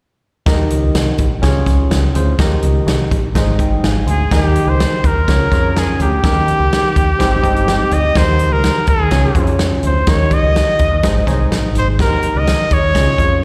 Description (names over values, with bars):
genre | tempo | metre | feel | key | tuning
uptempo 1960s-style soul | 125 BPM | 4/4 | straight | Eb mixolydian | A4 = 438 Hz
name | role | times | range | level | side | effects
barky tine electric piano | accompaniment | 0.5-13.4 s | Ab2 to C6 | -23 LUFS | equal | overdrive
deep dub picked electric bass | bass | 0.5-13.4 s | G1 to F2 | -19 LUFS | equal | none
natural country drum kit | drums | 0.5-13.3 s | hi-hat, kick drum, snare drum | -19 LUFS | equal | none
clear trumpet | melody | 4.1-13.4 s | G4 to Eb5 | -19 LUFS | equal | none
room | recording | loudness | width
light reverb, small room ambience | live gig heard through the venue's PA, recital hall reverb | -14 LUFS | mono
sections
0.5-4.3 A section; 4.3-13.4 B section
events
none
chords
0.5 Eb; 1.4 Db; 2.4 Eb; 3.3 Ab; 4.3 Eb; 5.3 Db; 6.2 Eb; 7.2 Ab; 8.2 Eb; 9.1 Db; 10.1 Eb; 11.0 Ab; 12.0 Eb